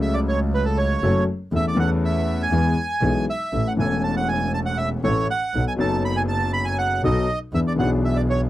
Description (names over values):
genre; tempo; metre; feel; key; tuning
tango; 120 BPM; 4/4; rubato; A major; A4 = 440 Hz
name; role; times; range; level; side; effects
bandoneon; melody; 0.0-8.4 s; A4 to B5; -24 LUFS; right 3 dB; none
warm grand piano; accompaniment; 0.0-8.5 s; E1 to A4; -23 LUFS; left 2 dB; none
rich double bass; bass; 0.0-8.5 s; E1 to E2; -24 LUFS; right 1 dB; none
room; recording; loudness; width
little or no reverb; dry, close 1970s-style studio recording; -19 LUFS; side -14 dB against mid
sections
0.0-8.5 A section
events
none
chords
0.0 F#m; 1.5 A/E; 2.5 E; 3.5 A; 5.5 B7; 7.5 E7